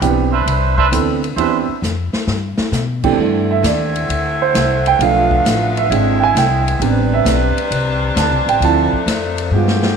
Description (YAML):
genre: jazz, big band swing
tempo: 132 BPM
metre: 4/4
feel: swing 68% on 8ths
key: C major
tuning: A4 = 441 Hz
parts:
  - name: warm grand piano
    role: accompaniment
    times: 0.0-9.9 s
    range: E3 to A5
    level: -16 LUFS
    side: right 8 dB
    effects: none
  - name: upright bass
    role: bass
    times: 0.0-10.0 s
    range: G#1 to B2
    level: -19 LUFS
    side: left 2 dB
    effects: none
  - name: swinging big-band drum kit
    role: drums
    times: 0.0-9.9 s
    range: crash cymbal, hi-hat, kick drum, ride cymbal, snare drum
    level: -22 LUFS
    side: left 2 dB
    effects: none
  - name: clear trumpet section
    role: stabs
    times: 0.3-1.6 s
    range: D4 to E5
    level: -18 LUFS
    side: right 6 dB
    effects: none
  - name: warm saxophone section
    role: sustained chords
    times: 3.2-10.0 s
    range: B2 to B4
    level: -20 LUFS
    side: left 2 dB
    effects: none
room: wet echo chamber reverb, RT60 1.4 s, small room ambience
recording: 1960s-style stereo, lossy compression artefacts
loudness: -13 LUFS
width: side -6 dB against mid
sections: 0.0-3.2 A section; 3.2-10.0 B section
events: drum fill 1.8-2.7, 9.5-10.0; grand piano solo 3.2-10.0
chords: 0.0 Cmaj9; 2.3 G; 3.2 C69; 5.0 Bm7b5; 5.9 E7alt; 6.8 Am11; 8.6 Dm7